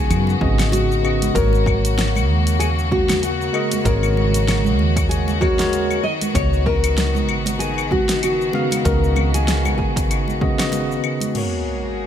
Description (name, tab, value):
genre	sunset chillout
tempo	96 BPM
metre	4/4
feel	swing 56% on 16ths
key	G# minor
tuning	A4 = 443 Hz
part	nylon-string guitar	melody	0.0-11.0 s	F#4 to D#5	-23 LUFS	left 3 dB	digital delay
part	tine electric piano	accompaniment	0.0-12.1 s	C#3 to E#5	-24 LUFS	right 1 dB	auto-pan, digital delay
part	rich chamber string section	sustained chords	0.0-12.1 s	C#3 to G#4	-26 LUFS	left 2 dB	none
part	woody fretless electric bass	bass	0.0-11.0 s	G#1 to F#2	-20 LUFS	equal	wide subtle chorus
part	deep house drum kit	drums	0.1-11.5 s	claves, crash cymbal, hi-hat, shaker, snare drum	-25 LUFS	left 1 dB	overdrive, studio reverb
part	congas	percussion	0.3-11.3 s	none	-28 LUFS	right 6 dB	none
part	electronic kick drum	drums	0.4-10.6 s	none	-23 LUFS	equal	overdrive, studio reverb
part	sub drop	sound effects	11.4-12.1 s	none	-27 LUFS	equal	none
room	light reverb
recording	none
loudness	-16 LUFS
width	side -9 dB against mid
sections	0.0-11.4 A section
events	impact 11.4-12.1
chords	0.0 C#9sus4; 1.4 G#9sus4; 6.0 C#9sus4; 11.4 G#9sus4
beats	0.10 0.73 | 1.35 1.98 2.60 3.23 | 3.85 4.48 5.10 5.73 | 6.35 6.98 7.60 8.23 | 8.85 9.48 10.10 10.73 | 11.35 11.98